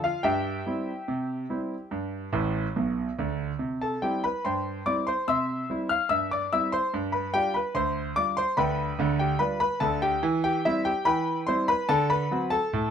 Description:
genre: ragtime piano.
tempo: 72 BPM.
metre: 2/4.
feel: straight.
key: C major.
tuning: A4 = 436 Hz.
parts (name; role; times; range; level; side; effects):
clear concert grand piano; solo; 0.0-12.9 s; A1 to F6; -24 LUFS; equal; none.
room: light reverb.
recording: none.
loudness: -24 LUFS.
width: side -8 dB against mid.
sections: 0.0-12.9 A section.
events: grand piano fill 2.3-3.6.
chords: 0.3 C/G; 1.9 G; 3.6 C; 6.9 G7; 8.6 G7/D; 10.3 C/E; 11.9 D7.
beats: | 0.25 1.09 | 1.93 2.77 | 3.61 4.44 | 5.27 6.10 | 6.93 7.76 | 8.59 9.42 | 10.25 11.08 | 11.91 12.74.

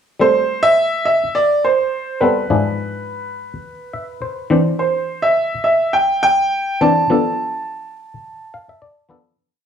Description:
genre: disco.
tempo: 104 BPM.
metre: 4/4.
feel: straight.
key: A minor.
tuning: A4 = 440 Hz.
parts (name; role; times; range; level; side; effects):
clear grand piano; melody; 0.2-9.1 s; B4 to A5; -16 LUFS; right 2 dB; none.
muted clav; accompaniment; 0.2-9.4 s; G#2 to F5; -18 LUFS; left 3 dB; phaser.
room: moderate large studio reverb, RT60 0.9 s.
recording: band playing live in one room.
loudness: -14 LUFS.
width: side -8 dB against mid.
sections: 0.2-9.4 verse.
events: clav fill 3.6-4.8, 8.2-9.4; fade-out 7.1-9.4.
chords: 0.2 Am7; 2.5 E7b9/G#; 4.5 Cadd9; 7.1 Bm7b5.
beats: | 0.20 0.77 1.34 1.92 | 2.49 3.07 3.64 4.22 | 4.79 5.37 5.94 6.52 | 7.09 7.67 8.24 8.82.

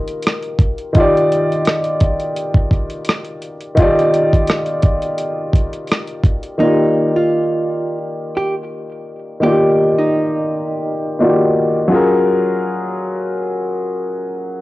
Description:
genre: lo-fi hip hop.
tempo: 85 BPM.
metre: 4/4.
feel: swing 57% on 16ths.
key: Eb major.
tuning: A4 = 440 Hz.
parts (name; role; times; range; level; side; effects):
warm upright piano; accompaniment; 0.0-14.6 s; Eb3 to D5; -16 LUFS; left 1 dB; cassette tape, plate reverb.
dusty soul sampler-style drum kit; drums; 0.1-6.6 s; hi-hat, kick drum, rim click; -15 LUFS; equal; overdrive, vintage 12-bit sampler grit, cassette tape.
hollow-body jazz guitar; melody; 6.6-12.2 s; Eb4 to G4; -20 LUFS; right 2 dB; cassette tape, plate reverb.
room: moderate studio reverb, RT60 0.6 s.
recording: home recording on cassette.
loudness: -14 LUFS.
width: side -18 dB against mid.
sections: 0.0-6.6 A section; 6.6-14.6 B section.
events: break 0.0-3.8.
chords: 0.0 Ebmaj9; 11.9 Gbmaj9.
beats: 0.24 | 0.95 1.65 2.36 3.07 | 3.77 4.48 5.18 5.89 | 6.59 7.30 8.01 8.71 | 9.42 10.12 10.83 11.54 | 12.24 12.95 13.65 14.36.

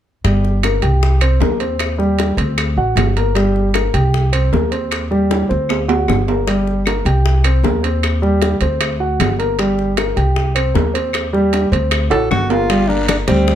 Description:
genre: Afro-Cuban jazz.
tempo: 154 BPM.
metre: 4/4.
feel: straight.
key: G harmonic minor.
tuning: A4 = 441 Hz.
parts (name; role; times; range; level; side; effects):
warm upright piano; accompaniment; 0.2-13.6 s; G3 to G5; -18 LUFS; equal; none.
upright bass; bass; 0.2-13.6 s; G1 to Eb2; -17 LUFS; equal; none.
bongos; percussion; 0.2-13.6 s; none; -24 LUFS; left 6 dB; none.
timbales; percussion; 0.2-13.5 s; none; -22 LUFS; right 6 dB; none.
claves; percussion; 0.6-13.3 s; none; -28 LUFS; left 4 dB; none.
clear alto saxophone; melody; 12.1-13.6 s; C4 to A4; -18 LUFS; equal; plate reverb.
congas; percussion; 12.7-13.6 s; none; -23 LUFS; left 5 dB; none.
guiro; percussion; 12.7-13.6 s; none; -30 LUFS; left 3 dB; none.
room: light reverb.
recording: dark, warm production.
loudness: -13 LUFS.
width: side -10 dB against mid.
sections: 0.2-12.7 A section.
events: drum fill 5.3-6.5, 12.1-12.7.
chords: 0.2 Gm; 1.0 Cm7; 1.8 Eb6; 2.6 D7; 3.4 Gm; 4.1 Cm7; 4.9 Eb6; 5.7 D7; 6.5 Gm; 7.3 Cm7; 8.0 Eb6; 8.8 D7; 9.6 Gm; 10.4 Cm7; 11.1 Eb6; 11.9 D7; 12.7 Gm.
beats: | 0.24 0.63 1.02 1.41 | 1.80 2.19 2.58 2.97 | 3.36 3.75 4.14 4.53 | 4.91 5.30 5.69 6.08 | 6.47 6.86 7.25 7.64 | 8.03 8.42 8.81 9.20 | 9.59 9.98 10.37 10.75 | 11.14 11.53 11.92 12.31 | 12.69 13.08 13.47.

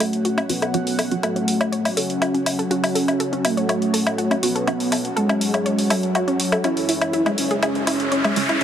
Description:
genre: melodic techno.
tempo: 122 BPM.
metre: 4/4.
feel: straight.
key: F# minor.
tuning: A4 = 440 Hz.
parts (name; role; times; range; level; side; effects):
fat analog lead; melody; 0.0-8.6 s; F#3 to E4; -23 LUFS; equal; analog chorus, dub echo.
sweeping resonant pad; sustained chords; 0.0-8.6 s; F#2 to F#5; -27 LUFS; equal; chorus.
analog pluck; arpeggios; 0.0-8.6 s; G#3 to C#5; -26 LUFS; left 1 dB; chorus, tape echo.
electronic hi-hat and woodblock; drums; 0.0-8.6 s; none; -24 LUFS; left 1 dB; overdrive.
filtered dub chord stab; stabs; 0.5-5.0, 8.4-8.6 s; C#3 to F#4; -28 LUFS; right 3 dB; none.
riser; sound effects; 7.1-8.6 s; none; -26 LUFS; equal; none.
room: moderate huge ambient reverb, RT60 3.9 s.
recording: heavily compressed radio sound, high-pass filter.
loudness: -18 LUFS.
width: side -9 dB against mid.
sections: 0.0-8.6 A section.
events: build-up 0.0-8.6; filter sweep on synth arpeggio sound 0.0-8.6; filter sweep on analog synth lead 0.0-8.6; riser 7.1-8.6.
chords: 0.0 F#m; 6.6 C#m/F#.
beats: 0.25 | 0.74 1.23 1.72 2.22 | 2.71 3.20 3.69 4.18 | 4.67 5.17 5.66 6.15 | 6.64 7.13 7.63 8.12 | 8.61.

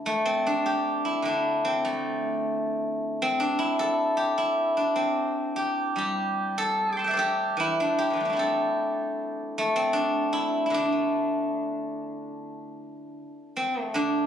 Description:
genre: chinese traditional, Chinese solo plucked strings.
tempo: 72-80 BPM.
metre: 2/4.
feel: rubato.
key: D shang mode.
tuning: A4 = 439 Hz.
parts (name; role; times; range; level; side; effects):
steel-string zither; solo; 0.0-14.3 s; D3 to D6; -24 LUFS; equal; none.
room: moderate concert hall reverb, RT60 2.1 s.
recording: recorded on a phone in the room, club reverb, compression.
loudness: -24 LUFS.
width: side -9 dB against mid.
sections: 0.0-12.4 A section; 12.4-14.3 B section.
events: none.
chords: none.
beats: 0.46 | 1.25 2.03 | 2.81 3.58 | 4.35 5.16 | 5.97 6.79 | 7.59 8.38 | 9.16 9.94 | 10.73 11.55 | 12.37 13.18 | 13.96.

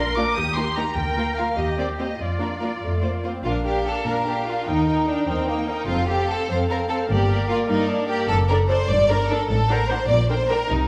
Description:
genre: quick classical-period movement for string orchestra.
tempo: 99 BPM (dotted quarters).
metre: 6/8.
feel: straight.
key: Bb major.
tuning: A4 = 441 Hz.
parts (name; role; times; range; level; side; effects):
warm studio violin section; melody; 0.0-10.6 s; D5 to Eb6; -32 LUFS; equal; none.
rich studio violin section; second line; 0.0-10.9 s; Bb3 to D5; -26 LUFS; equal; none.
warm studio viola section; accompaniment; 0.0-10.6 s; A3 to C5; -29 LUFS; equal; none.
rich studio double bass section; bass; 0.0-10.9 s; F1 to F2; -28 LUFS; equal; none.
warm studio cello section; bass; 0.0-10.9 s; Eb2 to Bb4; -31 LUFS; equal; none.
room: wet recital hall reverb, RT60 1.5 s.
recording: recorded in a church or concert hall.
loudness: -22 LUFS.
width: mono.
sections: 0.0-3.4 A section; 3.4-10.9 A section.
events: none.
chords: 0.4 Eb; 1.0 Bb/D; 1.6 Cm7/Eb; 2.2 Bb/F; 2.8 F; 3.4 Bb; 4.7 Eb; 5.9 F; 7.1 Gm; 8.3 D/F#; 8.9 Gm; 9.5 D7/A; 10.1 Gm/Bb.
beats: 0.37 | 0.97 1.58 | 2.20 2.82 | 3.44 4.06 | 4.67 5.28 | 5.89 6.50 | 7.09 7.70 | 8.30 8.90 | 9.50 10.10 | 10.70.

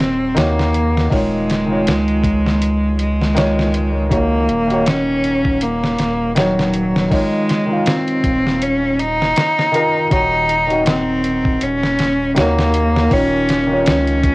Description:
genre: trip hop.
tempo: 80 BPM.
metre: 4/4.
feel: swing 56% on 16ths.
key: Eb dorian.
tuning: A4 = 442 Hz.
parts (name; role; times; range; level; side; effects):
clear cello; melody; 0.0-14.3 s; Gb3 to Eb4; -17 LUFS; equal; vintage 12-bit sampler grit, plate reverb.
felt-muted upright piano; accompaniment; 0.0-14.3 s; Eb3 to F5; -21 LUFS; equal; tremolo, cassette tape, plate reverb, tape echo.
round analog bass; bass; 0.0-14.3 s; Eb1 to Eb2; -22 LUFS; equal; tube saturation.
dusty soul sampler-style drum kit; drums; 0.0-14.3 s; hi-hat, kick drum, snare drum; -19 LUFS; equal; studio reverb, cassette tape.
room: light reverb.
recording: home recording on cassette.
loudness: -14 LUFS.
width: side -22 dB against mid.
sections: 0.0-14.3 A section.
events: none.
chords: 0.0 Ebm7; 1.1 Db/Eb; 4.1 Ebm7; 7.1 Db/Eb; 10.1 Ebm7; 13.1 Db/Eb.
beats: 0.36 | 1.11 1.86 2.61 3.36 | 4.11 4.86 5.61 6.36 | 7.11 7.86 8.61 9.36 | 10.11 10.86 11.61 12.36 | 13.11 13.86.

